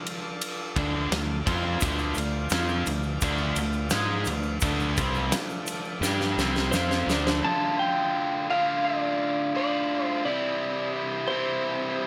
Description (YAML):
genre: classic rock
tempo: 85 BPM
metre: 4/4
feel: straight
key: D minor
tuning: A4 = 439 Hz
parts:
  - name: bright tonewheel organ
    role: sustained chords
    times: 0.0-12.1 s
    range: F3 to D5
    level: -40 LUFS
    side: equal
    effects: none
  - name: big rock drum kit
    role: drums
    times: 0.1-7.4 s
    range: kick drum, ride cymbal, snare drum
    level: -32 LUFS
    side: equal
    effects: none
  - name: biting overdriven guitar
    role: riff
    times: 0.8-7.4 s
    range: C3 to G#4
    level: -34 LUFS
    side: equal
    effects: spring reverb
  - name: overdriven electric guitar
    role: riff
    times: 0.8-12.1 s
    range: C3 to G#4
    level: -31 LUFS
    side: equal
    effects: none
  - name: growling fingered electric bass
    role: bass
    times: 0.8-7.4 s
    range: C2 to G#2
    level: -33 LUFS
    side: equal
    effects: overdrive
  - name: tube shaker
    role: percussion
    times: 1.8-7.4 s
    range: none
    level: -42 LUFS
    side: equal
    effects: none
  - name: clean lap steel guitar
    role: melody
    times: 6.7-12.1 s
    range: C5 to A5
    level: -31 LUFS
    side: equal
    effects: slapback echo
room: small room ambience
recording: none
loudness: -27 LUFS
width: mono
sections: 0.0-7.4 A section; 7.4-12.1 B section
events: drum fill 6.0-7.4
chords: 0.0 Dm; 10.3 C